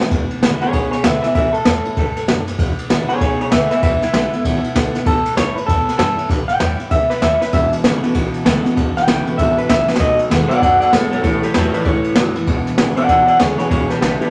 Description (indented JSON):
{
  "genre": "rockabilly",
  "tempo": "194 BPM",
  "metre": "4/4",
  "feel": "swing 62% on 8ths",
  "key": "E mixolydian",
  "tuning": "A4 = 439 Hz",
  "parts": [
    { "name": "picked steel-string acoustic guitar", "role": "accompaniment", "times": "0.0-14.3 s", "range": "E2 to F#4", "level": "-26 LUFS", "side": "equal", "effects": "none" },
    { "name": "electric guitar through a small old amp", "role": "riff", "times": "0.0-0.1, 7.5-14.3 s", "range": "E2 to G#3", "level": "-23 LUFS", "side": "equal", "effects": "none" },
    { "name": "upright bass", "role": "bass", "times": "0.0-14.2 s", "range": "E1 to A2", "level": "-27 LUFS", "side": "equal", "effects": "none" },
    { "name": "jazz brush drum kit", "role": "drums", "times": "0.0-14.3 s", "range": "kick drum, ride cymbal, snare drum", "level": "-20 LUFS", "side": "equal", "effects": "none" },
    { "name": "electric guitar through a small old amp", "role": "melody", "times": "0.6-14.3 s", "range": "E4 to G5", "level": "-20 LUFS", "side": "equal", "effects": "none" }
  ],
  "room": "moderate large studio reverb, RT60 1.5 s",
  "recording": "none",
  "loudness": "-16 LUFS",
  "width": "mono",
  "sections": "0.1-14.3 A section",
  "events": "drum fill 9.8",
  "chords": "0.1 E7; 1.4 A7; 2.6 E7; 5.1 A7; 7.5 E7; 10.0 B7; 11.2 A7; 12.5 E7"
}